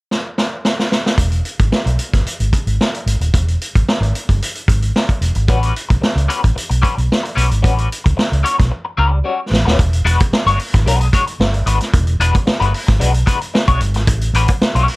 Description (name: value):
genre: funk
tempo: 112 BPM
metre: 4/4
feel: straight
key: E mixolydian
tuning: A4 = 440 Hz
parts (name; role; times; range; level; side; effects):
- vintage drum kit; drums; 0.1-15.0 s; hi-hat, kick drum, snare drum; -16 LUFS; equal; none
- vintage muted fingered electric bass; bass; 1.2-14.9 s; D#1 to C#2; -16 LUFS; equal; none
- electric guitar at the edge of break-up; accompaniment; 5.5-14.9 s; G3 to C#5; -19 LUFS; left 4 dB; wah, tremolo
room: light reverb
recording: none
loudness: -13 LUFS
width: side -22 dB against mid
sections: 0.0-1.2 A section; 1.2-9.8 B section; 9.8-15.0 C section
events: drum fill 0.1-1.2, 8.7-9.8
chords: 0.0 N.C.; 1.2 E; 5.5 A13; 9.8 E9; 14.1 A13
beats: 0.10 0.64 | 1.18 1.72 2.25 2.79 | 3.33 3.87 4.41 4.95 | 5.48 6.02 6.56 7.10 | 7.64 8.17 8.71 9.25 | 9.79 10.32 10.86 11.39 | 11.93 12.47 13.00 13.54 | 14.07 14.61